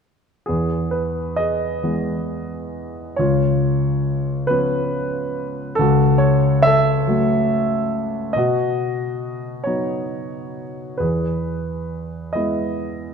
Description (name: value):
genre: classical, lyrical solo piano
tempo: 46 BPM (dotted quarters)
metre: 6/8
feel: rubato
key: E major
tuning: A4 = 441 Hz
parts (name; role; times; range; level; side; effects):
- warm concert grand piano; solo; 0.5-13.1 s; C#2 to E5; -18 LUFS; equal; none
room: moderate concert hall reverb, RT60 2.2 s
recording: dark, warm production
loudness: -18 LUFS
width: side -6 dB against mid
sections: 0.5-13.1 A section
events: none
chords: 0.5 E; 3.2 C#7; 5.8 F#m/C#; 8.4 B; 11.0 E